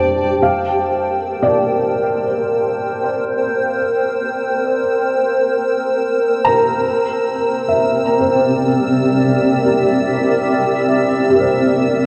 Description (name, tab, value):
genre	ambient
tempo	free time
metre	none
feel	none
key	unclear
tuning	A4 = 439 Hz
part	granular cloud pad	sustained chords	0.0-12.1 s	C4 to A5	-18 LUFS	equal	built-in reverb
part	felt-muted upright piano	arpeggios	0.0-12.1 s	G4 to Bb5	-22 LUFS	equal	tape echo
part	analog drone	drone	0.0-0.5 s	G3 to D4	-35 LUFS	equal	chorus
part	clear studio violin section	texture	0.0-12.1 s	D5 to E6	-35 LUFS	equal	none
room	wet huge ambient reverb, RT60 7.6 s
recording	worn, warbling old tape, cassette tape, warbly pitch drift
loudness	-16 LUFS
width	mono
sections	0.4-12.1 A section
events	fade-in on violin section 0.4-12.1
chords	0.4 Bbsus2; 6.8 C7